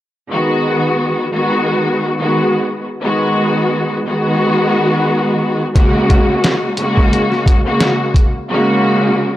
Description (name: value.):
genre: hip hop, boom-bap hip-hop.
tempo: 88 BPM.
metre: 4/4.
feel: swing 58% on 16ths.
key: G# minor.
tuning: A4 = 440 Hz.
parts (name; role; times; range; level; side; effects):
warm studio string section; accompaniment; 0.3-9.4 s; C#3 to F#4; -13 LUFS; equal; cassette tape, high-pass filter, low-pass filter.
trip hop sampler-style drum kit; drums; 5.8-8.3 s; hi-hat, kick drum, snare drum; -13 LUFS; equal; none.
room: light reverb.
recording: none.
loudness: -12 LUFS.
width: side -14 dB against mid.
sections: 0.3-9.4 A section.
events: none.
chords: 0.3 G#m7; 5.8 F#add9.